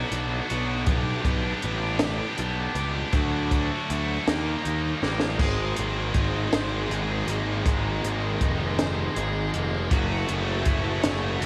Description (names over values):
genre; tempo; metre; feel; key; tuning
indie rock; 53 BPM (dotted quarters); 6/8; straight; unclear; A4 = 440 Hz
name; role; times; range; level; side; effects
scooped high-gain guitar; riff; 0.0-11.5 s; B2 to C#5; -34 LUFS; equal; distortion, cassette tape
scooped high-gain guitar; riff; 0.0-11.5 s; D#3 to G#4; -32 LUFS; equal; distortion, subtle chorus, cassette tape
fuzz picked electric bass; bass; 0.0-11.5 s; F1 to D#2; -30 LUFS; equal; overdrive
compact cocktail drum kit; drums; 0.1-11.5 s; crash cymbal, hi-hat, kick drum, snare drum; -29 LUFS; equal; cassette tape
soft string machine; sustained chords; 5.4-11.5 s; F#4 to C#6; -40 LUFS; equal; none
room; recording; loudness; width
light reverb, studio reverb; home recording on cassette; -26 LUFS; mono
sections
0.0-5.4 A section; 5.4-11.5 B section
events
drum fill 5.0-5.4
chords
0.0 Bm; 0.9 G; 3.1 D; 4.3 D#; 5.4 G#add9; 9.9 F#m7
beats
| 0.87 2.00 | 3.13 4.26 | 5.39 6.52 | 7.65 8.78 | 9.91 11.04